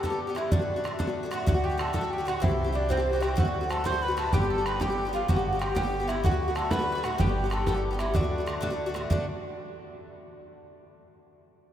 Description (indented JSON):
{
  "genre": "celtic folk, Celtic jig",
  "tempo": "126 BPM (dotted quarters)",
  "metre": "6/8",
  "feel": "straight",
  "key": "D mixolydian",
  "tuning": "A4 = 441 Hz",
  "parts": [
    { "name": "reedy baroque flute", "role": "melody", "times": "0.0-9.3 s", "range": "C5 to C6", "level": "-32 LUFS", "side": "right 2 dB", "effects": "none" },
    { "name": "accordion", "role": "second line", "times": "0.0-9.3 s", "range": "C4 to C5", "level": "-38 LUFS", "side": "left 3 dB", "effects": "none" },
    { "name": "Irish bouzouki", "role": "accompaniment", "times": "0.0-9.2 s", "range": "G2 to G4", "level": "-32 LUFS", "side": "left 3 dB", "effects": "none" },
    { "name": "bodhran", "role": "percussion", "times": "0.0-9.3 s", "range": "none", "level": "-30 LUFS", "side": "right 1 dB", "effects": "none" },
    { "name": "mandolin", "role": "second line", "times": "1.3-9.3 s", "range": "C4 to C5", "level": "-37 LUFS", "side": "right 3 dB", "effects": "none" },
    { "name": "upright bass", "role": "bass", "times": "1.5-9.3 s", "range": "G1 to D2", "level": "-32 LUFS", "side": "equal", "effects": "none" }
  ],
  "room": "wet cathedral reverb, RT60 5.3 s",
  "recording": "in a vast, echoing space",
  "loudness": "-25 LUFS",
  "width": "side -10 dB against mid",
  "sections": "0.0-1.5 A section; 1.5-9.1 A section",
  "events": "none",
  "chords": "0.0 G; 0.5 D; 2.4 C; 3.4 D; 4.3 G; 6.2 D; 7.2 G; 8.2 D"
}